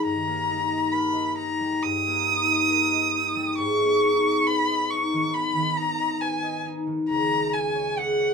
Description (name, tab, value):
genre	classical, romantic duo for violin and harp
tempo	68 BPM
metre	4/4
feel	rubato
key	G# minor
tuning	A4 = 444 Hz
part	rich violin	melody	0.0-8.3 s	F#5 to D#6	-24 LUFS	equal	none
part	concert harp	accompaniment	0.0-8.3 s	C#2 to D#5	-25 LUFS	left 1 dB	none
room	light reverb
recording	minimal, uncompressed stereo recording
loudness	-21 LUFS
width	side -5 dB against mid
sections	0.0-8.3 A section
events	none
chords	0.1 D#/G; 3.6 G#m; 7.1 C#m